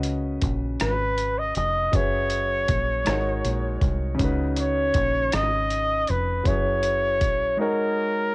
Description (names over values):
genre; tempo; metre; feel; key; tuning
slow six-eight R&B; 53 BPM (dotted quarters); 6/8; straight; unclear; A4 = 440 Hz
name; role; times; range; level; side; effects
warm concert grand piano; accompaniment; 0.0-8.3 s; Db3 to Fb5; -28 LUFS; left 1 dB; cassette tape
deep dub fingered electric bass; bass; 0.0-7.6 s; F1 to Db2; -28 LUFS; equal; none
dusty soul sampler-style drum kit; drums; 0.0-7.4 s; hi-hat, kick drum, rim click; -26 LUFS; equal; overdrive, cassette tape
clear flugelhorn; melody; 0.8-8.3 s; Bb4 to Eb5; -24 LUFS; equal; cassette tape
room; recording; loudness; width
moderate booth ambience, RT60 0.2 s; home recording on cassette; -21 LUFS; side -24 dB against mid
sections
0.0-8.3 A section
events
none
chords
0.0 Db9sus4; 1.9 Gb9sus4; 3.1 Ab9sus4; 4.2 Db9sus4; 6.5 Gb9sus4; 7.6 Ab9sus4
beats
0.79 | 1.93 3.06 | 4.19 5.32 | 6.45 7.58